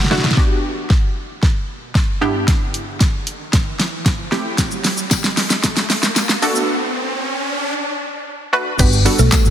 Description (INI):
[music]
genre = dance-pop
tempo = 114 BPM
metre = 4/4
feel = straight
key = G major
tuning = A4 = 443 Hz
[part]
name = string machine, cellos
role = sustained chords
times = 0.0-0.3, 9.4-9.5 s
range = D3 to B4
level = -34 LUFS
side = equal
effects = none
[part]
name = deep house drum kit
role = drums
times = 0.0-9.5 s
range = crash cymbal, handclaps, hi-hat, kick drum, shaker, snare drum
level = -16 LUFS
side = equal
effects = soft clipping on snare
[part]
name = punchy chord stab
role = accompaniment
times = 0.1-9.5 s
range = G2 to B4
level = -20 LUFS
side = right 1 dB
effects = chorus, sidechain pumping
[part]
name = riser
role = sound effects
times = 1.9-7.7 s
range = none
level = -25 LUFS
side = right 1 dB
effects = none
[part]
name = tambourine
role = percussion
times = 5.1-9.4 s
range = none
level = -28 LUFS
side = left 12 dB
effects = none
[part]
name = mallet-like synth pluck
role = melody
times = 8.8-9.5 s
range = A3 to B4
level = -20 LUFS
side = equal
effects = chorus, phaser, sidechain pumping
[part]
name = vintage muted fingered electric bass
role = bass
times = 8.8-9.5 s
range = G1 to B1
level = -15 LUFS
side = equal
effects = sidechain pumping
[sound]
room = light reverb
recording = dense, heavily limited modern master, high-pass filter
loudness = -15 LUFS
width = side -10 dB against mid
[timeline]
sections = 0.4-8.8 A section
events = drum fill 0.0-0.4, 0.4-6.7; build-up 0.4-8.8; filter sweep 0.4-8.8; riser 1.9-8.8; break 6.7-8.8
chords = 0.4 Gmaj7; 2.2 Em7/G; 4.3 Am7; 6.4 D; 8.8 Gmaj7